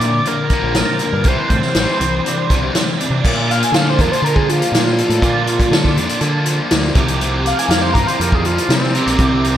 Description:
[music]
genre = indie rock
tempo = 121 BPM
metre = 4/4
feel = straight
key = unclear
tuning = A4 = 440 Hz
[part]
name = overdriven synth lead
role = melody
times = 0.0-9.6 s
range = C4 to Ab5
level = -19 LUFS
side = equal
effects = distortion, phaser, slapback echo
[part]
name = distorted electric guitar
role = riff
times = 0.0-9.6 s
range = Bb2 to Bb4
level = -22 LUFS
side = left 4 dB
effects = distortion, slapback echo
[part]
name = raw garage guitar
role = riff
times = 0.0-9.6 s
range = E3 to G4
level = -22 LUFS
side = right 5 dB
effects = overdrive, ensemble chorus, slapback echo, tape echo
[part]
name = growling picked electric bass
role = bass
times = 0.0-9.6 s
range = A1 to D3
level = -19 LUFS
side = equal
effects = overdrive
[part]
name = vintage drum kit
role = drums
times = 0.0-9.6 s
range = crash cymbal, hi-hat, kick drum, snare drum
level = -18 LUFS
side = equal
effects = none
[sound]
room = moderate lush hall reverb, RT60 1.8 s, small room reverb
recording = big arena sound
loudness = -13 LUFS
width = side -11 dB against mid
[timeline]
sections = 0.0-3.2 A section; 3.2-9.6 B section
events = analog synth lead solo 3.2-9.6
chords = 0.0 Bb; 1.3 Cadd9; 3.2 Bbmaj7; 7.0 C7sus4

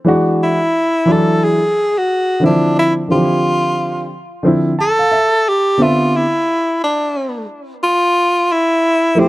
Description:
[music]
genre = hip hop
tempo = 89 BPM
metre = 4/4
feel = swing 62% on 16ths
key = unclear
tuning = A4 = 442 Hz
[part]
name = dark baby grand piano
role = accompaniment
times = 0.0-9.3 s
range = D3 to A5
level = -14 LUFS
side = equal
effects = none
[part]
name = breathy tenor saxophone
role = melody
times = 0.4-9.3 s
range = C4 to A4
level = -14 LUFS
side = equal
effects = analog delay
[sound]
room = moderate studio ambience, RT60 0.5 s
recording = dark, warm production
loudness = -12 LUFS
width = side -18 dB against mid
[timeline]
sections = 0.0-5.5 A section; 5.5-9.3 B section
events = grand piano fill 4.5-5.5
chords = 0.1 E9; 2.4 Dm9; 5.5 Cmaj9; 8.2 Fmaj9

